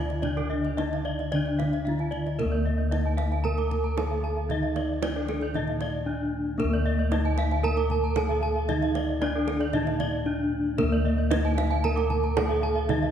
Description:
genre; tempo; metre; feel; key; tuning
Balinese gamelan; 114 BPM; 4/4; straight; D pelog; A4 = 440 Hz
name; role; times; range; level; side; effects
gamelan-type bronze metallophone; melody; 0.0-13.1 s; Bb3-40c to Bb4-40c; -29 LUFS; right 1 dB; none
gamelan-type bronze metallophone; accompaniment; 0.0-13.1 s; D3 to Bb3-40c; -35 LUFS; right 1 dB; none
gamelan-type bronze metallophone; arpeggios; 0.0-13.0 s; A4-45c to Bb5-40c; -33 LUFS; left 3 dB; none
gamelan-type bossed gongs; bass; 0.0-13.1 s; D2 to Bb4-40c; -28 LUFS; left 1 dB; none
gamelan-type bronze metallophone; arpeggios; 0.1-13.1 s; Bb4-40c to D6; -36 LUFS; right 6 dB; none
kendang; percussion; 0.1-13.0 s; none; -36 LUFS; right 4 dB; none
room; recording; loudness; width
wet concert hall reverb, RT60 2.1 s; heard from further back in the room; -24 LUFS; side -9 dB against mid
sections
0.0-2.4 A section; 2.4-10.8 B section; 10.8-13.1 B section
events
none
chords
none

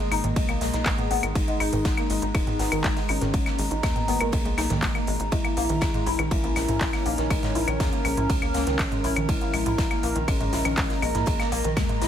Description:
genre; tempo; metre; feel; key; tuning
melodic techno; 121 BPM; 4/4; straight; unclear; A4 = 441 Hz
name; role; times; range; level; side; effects
soft octave-layered synth lead; melody; 0.0-12.1 s; A#3 to E4; -31 LUFS; left 3 dB; chorus, tremolo, sidechain pumping, ping-pong delay
woody wave-folded pluck; arpeggios; 0.0-12.1 s; D#3 to E4; -30 LUFS; equal; lush chorus, sidechain pumping, dub echo
warbly tape-like pad; texture; 0.0-12.1 s; G#3 to A#5; -32 LUFS; equal; chorus, built-in reverb, sidechain pumping
tight sequencer bass; bass; 0.1-12.1 s; D#1 to E2; -30 LUFS; equal; sidechain pumping
oversized low-tuned drum kit; drums; 0.1-12.1 s; hi-hat, snare drum; -37 LUFS; left 2 dB; high-pass filter on hats, high-pass filter on snare, high-pass filter on room
techno drum kit; drums; 0.1-12.1 s; claves, handclaps, hi-hat, ride cymbal, toms; -30 LUFS; equal; sidechain pumping on hats, sidechain pumping on toms, sidechain pumping on perc, sidechain pumping on cymbals
electronic kick drum; drums; 0.4-11.9 s; none; -26 LUFS; equal; none
room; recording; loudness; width
light reverb; none; -22 LUFS; side -9 dB against mid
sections
0.0-12.1 A section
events
none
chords
0.0 G#madd9; 5.3 A#dim

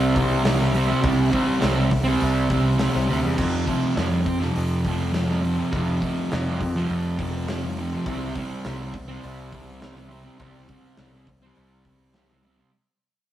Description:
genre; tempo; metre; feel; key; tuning
rock, shoegaze and dream pop; 103 BPM; 4/4; straight; unclear; A4 = 439 Hz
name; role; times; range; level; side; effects
fuzz guitar; riff; 0.0-12.7 s; F2 to C4; -23 LUFS; right 1 dB; distortion
modern bright picked electric bass; bass; 0.0-12.6 s; C2 to F2; -26 LUFS; equal; none
gated 80s drum kit; drums; 0.2-12.6 s; crash cymbal, hi-hat, kick drum, snare drum; -29 LUFS; equal; none
room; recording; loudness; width
moderate stone room reverb, RT60 1.0 s; rough rehearsal-room recording, vinyl crackle; -20 LUFS; side -12 dB against mid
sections
0.0-12.7 A section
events
fade-out 1.5-12.7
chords
0.0 C5; 3.4 F5; 8.1 C5

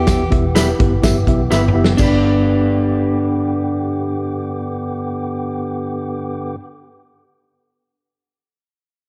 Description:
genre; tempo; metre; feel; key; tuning
uptempo 1960s-style soul; 126 BPM; 4/4; straight; G major; A4 = 440 Hz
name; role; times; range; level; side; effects
mellow tine electric piano; accompaniment; 0.0-6.6 s; G2 to E5; -23 LUFS; equal; none
tonewheel organ; sustained chords; 0.0-6.6 s; D3 to G4; -27 LUFS; equal; slow rotary speaker
vintage muted fingered electric bass; bass; 0.0-6.6 s; E1 to E2; -22 LUFS; equal; none
natural country drum kit; drums; 0.1-2.1 s; crash cymbal, hi-hat, kick drum, snare drum, toms; -20 LUFS; equal; vintage 12-bit sampler grit
tambourine; percussion; 0.1-2.2 s; none; -33 LUFS; equal; none
electric guitar through a small old amp; stabs; 0.6-6.6 s; D4 to B4; -24 LUFS; equal; spring reverb
room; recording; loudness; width
moderate echo chamber reverb, RT60 1.9 s, small room reverb; cassette tape; -17 LUFS; mono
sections
0.0-2.0 A section; 2.0-5.8 B section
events
drum fill 1.5-2.0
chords
0.0 Em; 2.0 G

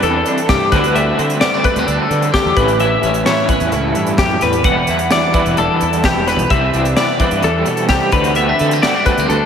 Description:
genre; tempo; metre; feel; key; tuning
math rock and midwest emo; 130 BPM; 4/4; straight; unclear; A4 = 441 Hz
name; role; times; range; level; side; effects
twelve-string electric guitar; accompaniment; 0.0-9.5 s; E2 to E4; -20 LUFS; right 4 dB; none
twelve-string electric guitar; arpeggios; 0.0-9.5 s; G4 to F#5; -16 LUFS; left 4 dB; analog chorus, analog delay, slapback echo
crunchy overdriven guitar; riff; 0.0-9.5 s; A2 to F#4; -20 LUFS; right 1 dB; tremolo, slapback echo
fuzz fingered electric bass; bass; 0.0-9.4 s; E1 to D3; -21 LUFS; equal; overdrive
crisp fusion drum kit; drums; 0.0-9.4 s; hi-hat, kick drum, snare drum; -20 LUFS; equal; none
room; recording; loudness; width
wet lush hall reverb, RT60 2.3 s; big arena sound; -12 LUFS; side -7 dB against mid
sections
0.0-9.5 A section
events
none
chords
0.0 Cadd9; 0.7 D9sus4; 2.6 A9; 4.7 Em9; 6.5 Cmaj9; 8.1 D9sus4

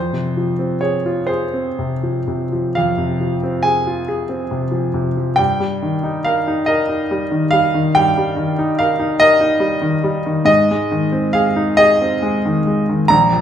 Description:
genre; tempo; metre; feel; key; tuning
classical, romantic nocturne for solo piano; 39-49 BPM (dotted quarters); 12/8; rubato; F minor; A4 = 440 Hz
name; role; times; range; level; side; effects
clear baby grand piano; solo; 0.0-13.4 s; Bb1 to Bb5; -14 LUFS; equal; none
room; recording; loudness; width
moderate recital hall reverb, RT60 1.4 s; minimal, uncompressed stereo recording; -15 LUFS; side -9 dB against mid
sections
0.0-13.4 A section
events
none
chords
0.0 Fm; 5.4 Eb/G; 10.5 Ab

